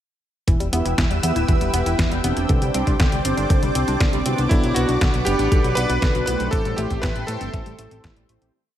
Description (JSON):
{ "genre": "italo disco", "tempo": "119 BPM", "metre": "4/4", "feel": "straight", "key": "E minor", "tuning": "A4 = 441 Hz", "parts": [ { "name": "lush unison pad", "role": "sustained chords", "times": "0.6-8.5 s", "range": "A4 to E6", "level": "-28 LUFS", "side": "right 1 dB", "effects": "chorus, phaser" }, { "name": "analog pluck", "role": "arpeggios", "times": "0.5-8.5 s", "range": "D3 to E4", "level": "-27 LUFS", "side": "left 2 dB", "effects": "chorus, digital delay" }, { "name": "fat analog bass", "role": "bass", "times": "0.5-8.5 s", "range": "D1 to A2", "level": "-24 LUFS", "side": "equal", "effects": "none" }, { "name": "detuned 8-bit digital drum machine", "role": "drums", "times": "0.5-8.5 s", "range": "hi-hat, snare drum", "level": "-28 LUFS", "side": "equal", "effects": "overdrive, gated reverb" }, { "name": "electronic kick drum", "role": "drums", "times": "0.5-8.1 s", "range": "none", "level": "-20 LUFS", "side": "equal", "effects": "overdrive" }, { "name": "mellow synth brass", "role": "stabs", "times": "0.7-8.5 s", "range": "A3 to F#5", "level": "-27 LUFS", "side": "right 1 dB", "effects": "chorus, digital delay" }, { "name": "bright electric grand piano", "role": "melody", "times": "4.5-8.2 s", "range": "E4 to B4", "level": "-25 LUFS", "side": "equal", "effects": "ping-pong delay" } ], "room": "light reverb", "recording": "none", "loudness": "-18 LUFS", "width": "side -11 dB against mid", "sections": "0.5-8.5 verse", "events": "fade-out 5.9-8.5", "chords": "0.5 Em; 2.5 Csus2; 4.5 Bm; 6.5 Am7" }